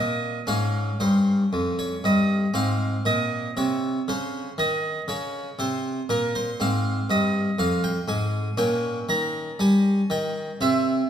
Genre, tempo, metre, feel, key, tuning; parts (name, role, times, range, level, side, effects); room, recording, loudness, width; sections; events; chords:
classical, baroque-style suite movement for harpsichord; 60 BPM; 4/4; rubato; Ab major, F minor from 6.6 s; A4 = 443 Hz
harpsichord; solo; 0.0-11.1 s; F2 to Bb5; -22 LUFS; equal
moderate scoring stage reverb, RT60 1.8 s; -22 LUFS; side -9 dB against mid
0.0-11.1 A section
0.5 Db; 2.6 Ab; 6.6 Fm; 8.6 Gdim/Bb; 10.6 C